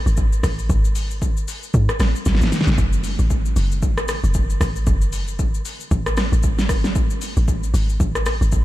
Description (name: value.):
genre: amapiano.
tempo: 115 BPM.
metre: 4/4.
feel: swing 58% on 16ths.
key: F# minor.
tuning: A4 = 441 Hz.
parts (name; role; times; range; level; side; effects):
deep log drum bass; bass; 0.0-8.6 s; F#1 to G#2; -20 LUFS; equal; none.
deep house drum kit; drums; 0.1-8.6 s; hi-hat, kick drum, rim click, shaker, snare drum; -20 LUFS; equal; none.
room: light reverb.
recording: none.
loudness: -17 LUFS.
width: side -16 dB against mid.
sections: 0.0-8.6 A section.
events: drum fill 2.3-2.8.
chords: none.